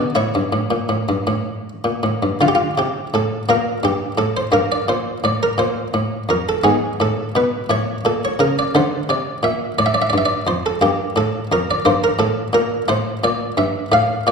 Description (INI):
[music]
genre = classical, baroque-style suite movement for harpsichord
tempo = 57 BPM (dotted quarters)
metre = 6/8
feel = rubato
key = D minor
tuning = A4 = 440 Hz
[part]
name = buff-stop harpsichord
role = solo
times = 0.0-14.3 s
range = F2 to F5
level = -16 LUFS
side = equal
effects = none
[sound]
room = wet recital hall reverb, RT60 1.5 s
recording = recorded in a church or concert hall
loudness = -16 LUFS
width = side -5 dB against mid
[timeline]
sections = 0.0-2.4 A section; 2.4-14.3 A section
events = none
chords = 0.1 A; 2.4 D5; 3.5 Gmadd9; 4.5 Fadd11; 6.7 G#m; 7.7 A; 8.7 Dm; 10.8 Gm; 11.9 Gmadd9